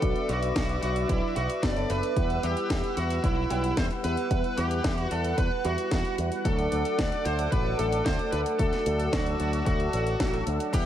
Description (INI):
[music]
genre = italo disco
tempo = 112 BPM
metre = 4/4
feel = straight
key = unclear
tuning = A4 = 445 Hz
[part]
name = smooth overdriven lead guitar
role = melody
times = 0.0-10.9 s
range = E4 to D5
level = -31 LUFS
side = equal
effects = ping-pong delay
[part]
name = warm analog pad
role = sustained chords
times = 0.0-10.9 s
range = A4 to F#6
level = -32 LUFS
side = right 1 dB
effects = chorus
[part]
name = chorused polysynth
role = stabs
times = 0.0-10.9 s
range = F#3 to F#5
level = -34 LUFS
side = equal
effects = cassette tape
[part]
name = picked electric bass with an envelope filter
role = bass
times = 0.0-10.9 s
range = F#1 to E2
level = -30 LUFS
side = equal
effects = none
[part]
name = electronic kick drum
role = drums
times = 0.0-10.8 s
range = none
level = -29 LUFS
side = equal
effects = small room reverb
[part]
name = house drum kit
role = drums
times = 0.0-10.8 s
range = cabasa, crash cymbal, hi-hat, snare drum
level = -35 LUFS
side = equal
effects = small room reverb
[sound]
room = light reverb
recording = none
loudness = -24 LUFS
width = side -10 dB against mid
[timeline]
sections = 0.0-10.7 A section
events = filter sweep on analog polysynth 0.0-10.7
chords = 0.0 Bm; 2.2 Emadd9; 6.5 D